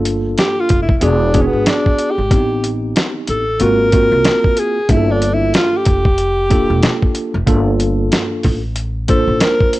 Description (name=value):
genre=hip hop, jazz-hop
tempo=93 BPM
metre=4/4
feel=swing 58% on 16ths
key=G dorian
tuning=A4 = 440 Hz
part: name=mellow tine electric piano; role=accompaniment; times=0.0-9.8 s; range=Bb3 to C5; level=-18 LUFS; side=equal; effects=medium stereo tremolo
part: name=upright bass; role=bass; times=0.0-9.4 s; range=E1 to C2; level=-19 LUFS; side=equal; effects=none
part: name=dusty soul sampler-style drum kit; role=drums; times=0.1-9.8 s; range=hi-hat, kick drum, snare drum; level=-15 LUFS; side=equal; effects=vintage 12-bit sampler grit
part: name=warm alto saxophone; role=melody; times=0.4-9.7 s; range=B3 to Bb4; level=-16 LUFS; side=equal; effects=none
room=small room ambience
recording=dry, gritty hardware recording, cassette tape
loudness=-12 LUFS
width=side -17 dB against mid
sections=0.0-9.8 A section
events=alto saxophone solo 0.0-9.8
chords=0.0 Gm7; 1.0 E7; 2.3 Am7b5; 3.6 Ab13; 4.9 Gm7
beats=0.38 1.02 1.67 | 2.31 2.96 3.60 4.25 | 4.89 5.54 6.18 6.83 | 7.47 8.12 8.76 9.41